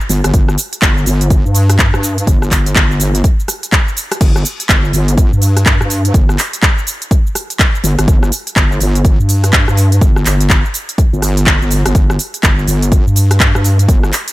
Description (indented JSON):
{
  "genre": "bass house",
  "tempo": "124 BPM",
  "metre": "4/4",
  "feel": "swing 62% on 16ths",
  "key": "unclear",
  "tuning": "A4 = 440 Hz",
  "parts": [
    { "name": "house drum kit", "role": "drums", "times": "0.0-14.3 s", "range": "crash cymbal, handclaps, hi-hat, rim click, shaker", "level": "-16 LUFS", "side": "equal", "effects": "none" },
    { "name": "wobble bass", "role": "bass", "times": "0.1-14.1 s", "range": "G1 to G2", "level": "-12 LUFS", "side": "equal", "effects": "chorus, tube saturation, sidechain pumping" },
    { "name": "electronic kick drum", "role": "drums", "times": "0.3-14.0 s", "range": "none", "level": "-12 LUFS", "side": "equal", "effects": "overdrive" }
  ],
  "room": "little or no reverb",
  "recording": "none",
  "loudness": "-10 LUFS",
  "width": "side -17 dB against mid",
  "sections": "0.0-14.3 A section",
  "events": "none",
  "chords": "none"
}